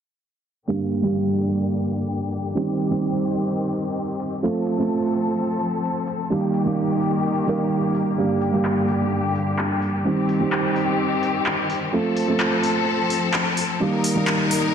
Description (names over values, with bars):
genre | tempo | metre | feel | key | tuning
EDM, festival progressive house | 128 BPM | 4/4 | straight | G minor | A4 = 441 Hz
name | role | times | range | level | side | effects
felt-muted upright piano | accompaniment | 0.7-14.7 s | G2 to Bb4 | -22 LUFS | right 2 dB | digital delay
clear symphonic string section | sustained chords | 0.7-14.7 s | D3 to Bb4 | -26 LUFS | left 4 dB | low-pass filter
big-room dance drum kit | drums | 0.9-14.6 s | handclaps, hi-hat | -26 LUFS | left 1 dB | low-pass filter on hats, low-pass filter on snare, low-pass filter on room
room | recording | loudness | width
wet lush hall reverb, RT60 2.1 s | dense, heavily limited modern master, low-pass filter | -20 LUFS | side -8 dB against mid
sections
0.7-14.7 A section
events
filter sweep on drum 0.7-14.7; filter sweep on string section 0.7-14.7; filter sweep 0.7-14.7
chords
0.7 Gm; 2.6 Cm; 4.4 F; 6.3 Eb; 8.2 Gm; 10.1 Cm; 11.9 F; 13.8 Eb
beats
| 0.68 1.15 1.62 2.09 | 2.56 3.03 3.50 3.96 | 4.43 4.90 5.37 5.84 | 6.31 6.78 7.25 7.71 | 8.18 8.65 9.12 9.59 | 10.06 10.53 10.99 11.46 | 11.93 12.40 12.87 13.34 | 13.81 14.28